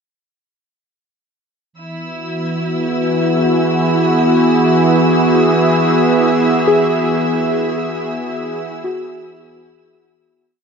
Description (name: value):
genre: ambient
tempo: 55 BPM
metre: 4/4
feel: straight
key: E major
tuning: A4 = 440 Hz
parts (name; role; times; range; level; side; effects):
- warm analog pad; sustained chords; 1.7-10.5 s; E3 to E5; -14 LUFS; right 1 dB; chorus
- overtone-sweeping drone; drone; 2.0-10.6 s; E3 to B3; -22 LUFS; left 1 dB; chorus, built-in reverb
- rich studio violin section; texture; 1.8-10.5 s; E4 to E6; -23 LUFS; right 1 dB; none
- muted felt-like synth keys; arpeggios; 6.7-10.6 s; F#4 to G#4; -20 LUFS; left 1 dB; chorus, ping-pong delay
room: wet huge ambient reverb, RT60 8.2 s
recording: dark, warm production, nothing above 7.8 kHz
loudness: -13 LUFS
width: side -6 dB against mid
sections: 1.8-10.5 A section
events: fade-out on synth drone 1.8-10.5; fade-out 6.1-10.5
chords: 1.8 E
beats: | 1.76 2.86 3.95 5.04 | 6.13 7.22 8.31 9.40